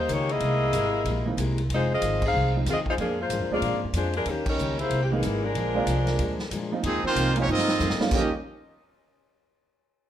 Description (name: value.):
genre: jazz, big band swing.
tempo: 187 BPM.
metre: 4/4.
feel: swing 62% on 8ths.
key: unclear.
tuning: A4 = 440 Hz.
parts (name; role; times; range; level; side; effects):
mellow saxophone section; melody; 0.0-6.5 s; Eb3 to F5; -26 LUFS; left 2 dB; plate reverb.
warm upright piano; accompaniment; 0.0-8.3 s; E3 to D#4; -30 LUFS; right 5 dB; none.
upright bass; bass; 0.0-8.3 s; F1 to Bb2; -28 LUFS; equal; none.
picked steel-string acoustic guitar; accompaniment; 0.1-8.3 s; F2 to G4; -34 LUFS; left 4 dB; none.
swinging big-band drum kit; drums; 0.1-8.2 s; crash cymbal, hi-hat, kick drum, ride cymbal, snare drum; -33 LUFS; equal; none.
mellow trombone section; second line; 5.4-8.3 s; D3 to G4; -29 LUFS; right 4 dB; none.
brilliant trumpet section; melody; 6.8-8.3 s; Bb3 to Eb5; -27 LUFS; right 1 dB; plate reverb.
room: moderate large studio reverb, RT60 0.8 s.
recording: none.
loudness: -23 LUFS.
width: side -10 dB against mid.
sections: 0.0-6.8 A section; 6.8-8.1 B section; 8.1-9.4 C section.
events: band accent 2.2, 4.4; break 6.5-6.8; drum fill 7.5-8.1.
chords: 0.4 C7alt; 1.7 Fm7; 3.0 Bb7; 4.3 Eb7; 4.9 C7alt; 5.5 Bb7; 6.8 Ab69; 8.1 Eb7.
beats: 0.09 | 0.41 0.73 1.05 1.38 | 1.70 2.02 2.34 2.66 | 2.98 3.30 3.62 3.94 | 4.27 4.59 4.91 5.23 | 5.55 5.87 6.19 6.51 | 6.83 7.15 7.47 7.79 | 8.11.